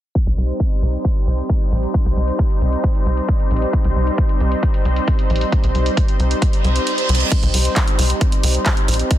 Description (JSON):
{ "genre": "uplifting trance", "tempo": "134 BPM", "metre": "4/4", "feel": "straight", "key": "C minor", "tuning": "A4 = 436 Hz", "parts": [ { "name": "lush unison pad", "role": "sustained chords", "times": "0.2-9.2 s", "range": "G3 to C5", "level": "-22 LUFS", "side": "equal", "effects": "chorus, sidechain pumping" }, { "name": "electronic kick drum", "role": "drums", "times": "0.2-9.2 s", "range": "none", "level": "-17 LUFS", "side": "equal", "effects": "overdrive" }, { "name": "punchy analog drum machine", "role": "drums", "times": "0.2-9.2 s", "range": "crash cymbal, handclaps, hi-hat", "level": "-24 LUFS", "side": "right 2 dB", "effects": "none" }, { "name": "tight sequencer bass", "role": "bass", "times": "0.3-9.0 s", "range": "Bb1 to C2", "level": "-18 LUFS", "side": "equal", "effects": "tube saturation, sidechain pumping" }, { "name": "reverse cymbal", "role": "sound effects", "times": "6.6-7.3 s", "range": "none", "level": "-25 LUFS", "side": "right 5 dB", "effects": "none" } ], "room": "little or no reverb", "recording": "dense, heavily limited modern master, low-pass filter", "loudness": "-15 LUFS", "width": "side -13 dB against mid", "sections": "0.2-7.3 A section; 7.3-9.2 B section", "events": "filter sweep on analog synth bass 0.2-7.3; filter sweep on analog synth pad 0.2-7.3; filter sweep 0.2-7.3; reverse cymbal 6.6-7.3; kick drops out 6.9-7.3", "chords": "0.2 Cm" }